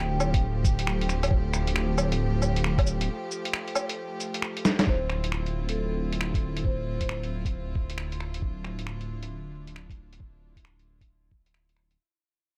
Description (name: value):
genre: future garage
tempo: 135 BPM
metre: 4/4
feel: swing 63% on 16ths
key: D minor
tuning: A4 = 439 Hz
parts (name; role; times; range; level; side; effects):
- vibraphone with medium mallets; melody; 0.0-0.4, 4.9-7.3 s; A4 to G5; -41 LUFS; equal; digital delay
- rich chamber string section; sustained chords; 0.0-11.9 s; F3 to G4; -39 LUFS; equal; sidechain pumping
- swelling detuned saw bass; bass; 0.0-12.0 s; D1; -31 LUFS; equal; sidechain pumping
- lo-fi sampler-style drum kit; drums; 0.2-12.0 s; cabasa, finger snaps, hi-hat, snare drum, woodblock; -32 LUFS; equal; none
- electronic kick drum; drums; 0.3-11.4 s; none; -28 LUFS; equal; none
room: digital ambience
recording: none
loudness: -28 LUFS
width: mono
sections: 0.0-4.9 A section; 4.9-12.0 B section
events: break 3.1-4.9; drum fill 4.6; fade-out 4.9-12.0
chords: 0.0 Fadd9/D; 4.9 Dm9